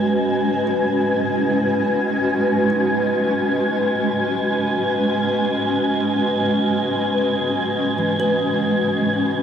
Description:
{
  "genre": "ambient",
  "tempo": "free time",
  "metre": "none",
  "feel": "none",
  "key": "C# dorian",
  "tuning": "A4 = 443 Hz",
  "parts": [
    { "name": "granular cloud pad", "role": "sustained chords", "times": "0.0-9.4 s", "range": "G#3 to D#5", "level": "-19 LUFS", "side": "equal", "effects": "built-in reverb" },
    { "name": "kalimba", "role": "arpeggios", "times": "0.0-9.4 s", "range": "E3 to A#5", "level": "-30 LUFS", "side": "left 1 dB", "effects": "tape echo" },
    { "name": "wind-like tuned noise texture", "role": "texture", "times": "0.0-9.4 s", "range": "G#5", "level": "-24 LUFS", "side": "right 1 dB", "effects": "built-in reverb" }
  ],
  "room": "wet huge ambient reverb, RT60 8.3 s",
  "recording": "none",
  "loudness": "-17 LUFS",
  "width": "side -8 dB against mid",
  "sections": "0.0-9.4 A section",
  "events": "fade-in on kalimba 0.0-9.4",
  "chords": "0.0 C#m11"
}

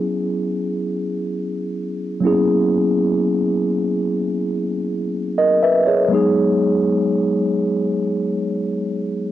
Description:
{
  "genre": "R&B",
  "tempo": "free time",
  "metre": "none",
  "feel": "none",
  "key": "unclear",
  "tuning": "A4 = 440 Hz",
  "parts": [
    { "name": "mellow tine electric piano", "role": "solo", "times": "0.0-9.3 s", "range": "F#3 to E5", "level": "-17 LUFS", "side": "equal", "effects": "slow stereo tremolo, cassette tape" }
  ],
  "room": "light reverb",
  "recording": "home recording on cassette",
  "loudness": "-17 LUFS",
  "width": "side -12 dB against mid",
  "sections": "0.0-9.3 A section",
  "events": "none",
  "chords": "0.0 F#9sus4; 6.1 G#m7"
}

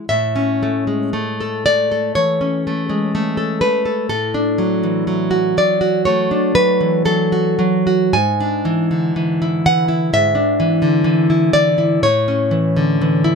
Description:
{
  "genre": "romantic piece for solo classical guitar",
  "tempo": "60 BPM",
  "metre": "4/4",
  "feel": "uneven beats, rubato",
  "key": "A major",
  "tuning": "A4 = 440 Hz",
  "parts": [
    { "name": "nylon-string guitar", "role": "solo", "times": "0.0-13.3 s", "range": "G#2 to G#5", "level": "-14 LUFS", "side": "equal", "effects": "none" }
  ],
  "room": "little or no reverb",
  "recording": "close, detailed microphones",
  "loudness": "-14 LUFS",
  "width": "side -5 dB against mid",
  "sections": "0.1-13.3 A section",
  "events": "none",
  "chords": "0.1 A; 4.1 D/A; 8.2 E7/G#; 12.0 A"
}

